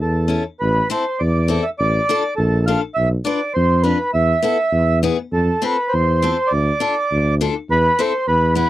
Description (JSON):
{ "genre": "alpine folk, alpine dance band", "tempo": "102 BPM", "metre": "2/4", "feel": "rubato", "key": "A minor", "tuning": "A4 = 438 Hz", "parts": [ { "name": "mellow accordion", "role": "melody", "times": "0.0-8.7 s", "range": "A4 to F5", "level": "-18 LUFS", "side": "right 2 dB", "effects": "none" }, { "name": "warm tuba", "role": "bass", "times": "0.0-8.7 s", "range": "A1 to F2", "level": "-18 LUFS", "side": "equal", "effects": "none" }, { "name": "picked steel-string acoustic guitar", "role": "accompaniment", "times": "0.3-8.7 s", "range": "B3 to B4", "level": "-21 LUFS", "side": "left 7 dB", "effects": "none" } ], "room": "little or no reverb", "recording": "dry, close 1970s-style studio recording", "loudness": "-16 LUFS", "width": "side -14 dB against mid", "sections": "0.6-8.7 A section", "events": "none", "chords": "0.0 A; 0.6 Am; 1.8 Dm/A; 3.0 Bdim; 4.1 Esus4; 4.7 E; 5.3 F; 6.5 Dm; 7.7 Am/E", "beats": "| 0.60 1.20 | 1.79 2.38 | 2.97 3.55 | 4.14 4.73 | 5.33 5.92 | 6.52 7.11 | 7.69 8.27" }